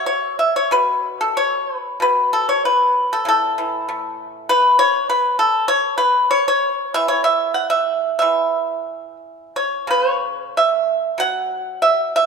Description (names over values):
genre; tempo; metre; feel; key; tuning
chinese traditional, Chinese solo plucked strings; 95 BPM; 4/4; uneven beats, rubato; A gong mode; A4 = 440 Hz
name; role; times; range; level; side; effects
pipa; solo; 0.0-12.3 s; A2 to F#5; -16 LUFS; equal; none
room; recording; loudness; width
moderate concert hall reverb, RT60 2.2 s; minimal, uncompressed stereo recording; -16 LUFS; side -5 dB against mid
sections
0.0-12.3 A section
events
none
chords
none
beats
0.07 0.73 1.37 | 2.02 2.65 3.27 3.89 | 4.51 5.12 5.72 6.34 | 6.97 7.60 8.24 8.89 | 9.56 10.24 10.89 11.51 | 12.14